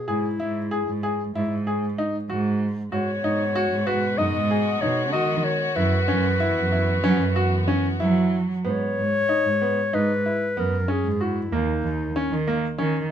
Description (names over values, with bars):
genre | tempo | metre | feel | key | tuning
contemporary instrumental, chamber music in an uneven meter | 189 BPM (eighths) | 9/8 | straight | G# minor | A4 = 440 Hz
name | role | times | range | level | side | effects
mellow clarinet | melody | 0.0-12.5 s | D#4 to D#5 | -26 LUFS | left 3 dB | none
clear concert grand piano | arpeggios | 0.1-13.0 s | A#3 to G#4 | -26 LUFS | left 1 dB | none
dark cello | bass | 0.1-13.0 s | D#2 to F#3 | -24 LUFS | right 2 dB | none
rich chamber string section | sustained chords | 2.9-8.6 s | B2 to F#4 | -30 LUFS | left 2 dB | none
room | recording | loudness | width
light reverb | close, detailed microphones | -21 LUFS | side -9 dB against mid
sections
0.0-8.7 A section; 8.7-13.1 B section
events
none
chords
0.0 E; 2.9 G#m7; 5.8 F#7sus4; 8.7 G#m7; 11.5 D#7(no3)